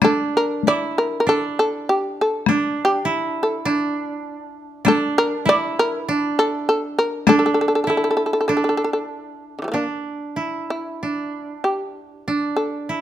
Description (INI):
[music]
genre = japanese traditional, Japanese chamber music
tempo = 49 BPM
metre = 2/4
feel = rubato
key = unclear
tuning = A4 = 440 Hz
[part]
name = shamisen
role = melody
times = 0.0-13.0 s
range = D3 to D5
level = -19 LUFS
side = equal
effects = none
[part]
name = koto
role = second line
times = 0.0-13.0 s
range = D4 to E4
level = -23 LUFS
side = right 3 dB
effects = none
[part]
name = solo taiko drums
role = percussion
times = 0.0-8.8 s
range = none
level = -21 LUFS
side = left 8 dB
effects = none
[sound]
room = light reverb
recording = close, detailed microphones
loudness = -18 LUFS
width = side -11 dB against mid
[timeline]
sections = 0.0-9.7 A section; 9.7-13.0 B section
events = none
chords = none